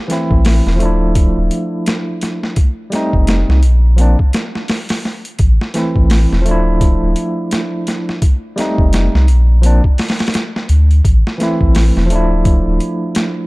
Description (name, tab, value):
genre	trip hop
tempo	85 BPM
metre	4/4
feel	swing 59% on 16ths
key	A phrygian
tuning	A4 = 444 Hz
part	barky tine electric piano	accompaniment	0.1-13.5 s	E3 to E4	-18 LUFS	equal	overdrive, tremolo, tape echo
part	boom bap sampler-style drum kit	drums	0.1-13.4 s	hi-hat, kick drum, snare drum	-16 LUFS	equal	overdrive
part	warm sub bass	bass	0.3-12.8 s	D1 to D2	-12 LUFS	equal	none
room	little or no reverb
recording	dark, warm production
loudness	-12 LUFS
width	side -23 dB against mid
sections	0.0-13.5 A section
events	none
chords	0.0 Am; 1.2 Dmadd9; 2.6 F7; 4.0 Bbadd9; 5.4 Am; 6.8 Dmadd9; 8.2 F7; 9.6 Bbadd9; 11.0 Am; 12.5 Dmadd9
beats	0.46 1.16 1.87 | 2.57 3.28 3.99 4.69 | 5.40 6.10 6.81 7.52 | 8.22 8.93 9.63 10.34 | 11.04 11.75 12.46 13.16